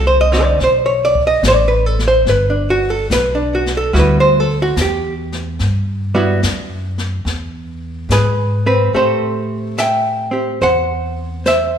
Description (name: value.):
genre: jazz ballad.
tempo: 72 BPM.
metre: 4/4.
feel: swing 66% on 8ths.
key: G major.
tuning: A4 = 440 Hz.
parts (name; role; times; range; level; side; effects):
archtop guitar, miked and amplified; accompaniment; 0.0-11.8 s; D3 to G5; -14 LUFS; right 1 dB; none.
upright bass; bass; 0.0-11.8 s; G1 to A2; -18 LUFS; equal; none.
jazz brush drum kit; drums; 0.3-11.8 s; brushed snare drum, hi-hat, kick drum, snare drum; -24 LUFS; left 3 dB; none.
room: moderate recital hall reverb, RT60 1.6 s.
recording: recorded in a church or concert hall.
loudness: -13 LUFS.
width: side -8 dB against mid.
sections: 0.0-8.9 A section; 8.9-11.8 B section.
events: none.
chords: 0.0 D7(no3); 2.3 G6; 7.3 E; 8.9 Am7.